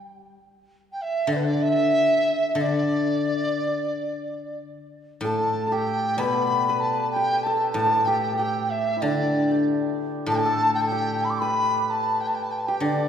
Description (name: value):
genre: chinese traditional, Chinese chamber ensemble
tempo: 94 BPM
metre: 4/4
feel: rubato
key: D zhi mode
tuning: A4 = 440 Hz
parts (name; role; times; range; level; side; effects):
- guzheng; accompaniment; 0.0-13.1 s; A2 to G3; -27 LUFS; left 3 dB; none
- mellow large dizi; melody; 0.9-13.1 s; B4 to D6; -23 LUFS; equal; none
- hammered dulcimer; second line; 5.2-13.1 s; D4 to D5; -27 LUFS; right 2 dB; none
room: wet church reverb, RT60 2.5 s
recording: recorded in a church or concert hall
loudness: -21 LUFS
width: side -8 dB against mid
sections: 0.0-5.2 A section; 5.2-13.1 B section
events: none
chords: none